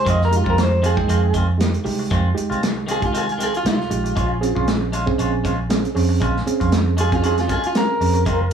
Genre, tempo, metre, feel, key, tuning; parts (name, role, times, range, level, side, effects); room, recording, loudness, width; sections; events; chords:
straight-eighth soul blues; 117 BPM; 4/4; swing 55% on 16ths; A4 = 444 Hz
electric guitar through a small old amp; melody; 0.0-8.5 s; F4 to Eb5; -22 LUFS; equal
reed electric piano; accompaniment; 0.0-8.3 s; Ab3 to G5; -24 LUFS; right 7 dB; fast tremolo
clean electric guitar; stabs; 0.0-8.4 s; Eb3 to F4; -27 LUFS; left 2 dB
vintage muted fingered electric bass; bass; 0.0-8.5 s; F1 to F2; -21 LUFS; right 1 dB
warm soul drum kit; drums; 0.1-8.5 s; hi-hat, kick drum, snare drum; -24 LUFS; equal
moderate studio reverb, RT60 0.6 s; studio ambience; -17 LUFS; side -8 dB against mid
0.0-8.5 A section
clean electric guitar solo 0.0-8.5
0.0 Fm7; 4.2 Bbm7